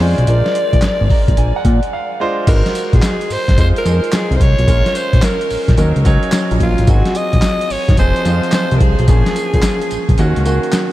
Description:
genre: R&B, new jack swing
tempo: 109 BPM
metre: 4/4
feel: swing 66% on 16ths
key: unclear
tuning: A4 = 440 Hz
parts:
  - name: breathy alto saxophone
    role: melody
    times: 0.0-10.5 s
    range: F4 to Eb5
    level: -20 LUFS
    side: equal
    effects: ping-pong delay
  - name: clear concert grand piano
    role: accompaniment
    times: 0.0-10.9 s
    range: Eb3 to Bb5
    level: -21 LUFS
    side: right 2 dB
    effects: none
  - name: fat analog bass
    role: bass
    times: 0.0-10.6 s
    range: F1 to Bb2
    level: -14 LUFS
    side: equal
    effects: none
  - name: boom bap sampler-style drum kit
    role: drums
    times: 0.0-10.9 s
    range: crash cymbal, handclaps, hi-hat, kick drum, snare drum, tambourine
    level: -15 LUFS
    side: equal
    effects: none
  - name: group handclap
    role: percussion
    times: 0.8-10.9 s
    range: none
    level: -39 LUFS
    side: left 2 dB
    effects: none
room: light reverb, small room ambience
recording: none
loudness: -12 LUFS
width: side -15 dB against mid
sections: 0.0-2.5 A section; 2.5-10.9 B section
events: grand piano fill 0.8-2.5; break 1.9-2.5; kick muted 10.2-10.9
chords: 0.3 Bb7; 2.5 Ab7; 3.6 Fm7; 4.7 Bbm7; 5.8 Ebm7; 6.9 Ab7; 8.0 Fm7; 9.1 Bbm7; 10.2 Ebm7

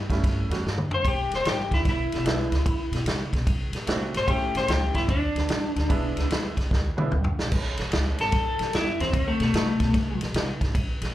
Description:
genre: electric blues shuffle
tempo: 148 BPM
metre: 4/4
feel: swing 65% on 8ths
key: A mixolydian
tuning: A4 = 444 Hz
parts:
  - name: clear upright piano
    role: accompaniment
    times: 0.1-7.1 s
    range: G3 to G4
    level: -31 LUFS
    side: right 3 dB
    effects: slapback echo
  - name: upright bass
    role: bass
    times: 0.1-11.1 s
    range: E1 to C3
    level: -28 LUFS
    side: equal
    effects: none
  - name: vintage drum kit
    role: drums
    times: 0.1-11.1 s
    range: crash cymbal, kick drum, ride cymbal, snare drum, toms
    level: -26 LUFS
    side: equal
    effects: none
  - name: electric slide guitar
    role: melody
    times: 0.9-10.2 s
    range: A3 to C5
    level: -26 LUFS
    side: left 1 dB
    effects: slapback echo
room: little or no reverb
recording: live gig heard through the venue's PA, club reverb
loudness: -22 LUFS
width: side -14 dB against mid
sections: 0.0-7.5 A section; 7.5-11.1 B section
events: drum fill 0.6-1.0, 6.7-7.5; electric slide guitar solo 7.5-11.1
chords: 0.0 A7; 1.0 E7; 2.7 D7; 4.3 A7; 5.1 D5; 5.9 E7; 7.5 A; 9.1 D5

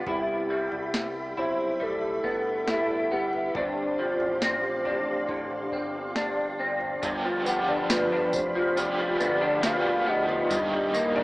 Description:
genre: dream pop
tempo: 69 BPM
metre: 4/4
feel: straight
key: unclear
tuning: A4 = 444 Hz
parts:
  - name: soft string machine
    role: sustained chords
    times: 0.0-11.2 s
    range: G4 to C6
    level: -34 LUFS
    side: equal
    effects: ensemble chorus
  - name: electric guitar through a small old amp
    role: arpeggios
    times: 0.0-11.2 s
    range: G2 to E4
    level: -27 LUFS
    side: equal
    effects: ensemble chorus, tape echo
  - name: fat analog bass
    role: bass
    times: 0.0-11.2 s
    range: F1 to D2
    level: -39 LUFS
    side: equal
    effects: none
  - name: soft octave-layered synth lead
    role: melody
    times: 0.1-11.2 s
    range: G4 to F5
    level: -29 LUFS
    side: equal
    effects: chorus
  - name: booming analog drum machine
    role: drums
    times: 0.1-11.2 s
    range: kick drum, snare drum, tambourine, toms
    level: -31 LUFS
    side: equal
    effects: overdrive
  - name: overdriven semi-hollow guitar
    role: accompaniment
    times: 7.0-11.2 s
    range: G2 to G4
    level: -32 LUFS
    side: right 1 dB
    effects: tremolo, wide subtle chorus
room: moderate lush hall reverb, RT60 2.8 s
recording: rough home demo mix, small speaker sound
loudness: -24 LUFS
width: side -20 dB against mid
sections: 0.0-7.0 A section; 7.0-11.2 B section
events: none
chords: 0.1 Cmaj7; 3.5 G7sus4; 7.0 G7; 10.5 Ebmaj7/G

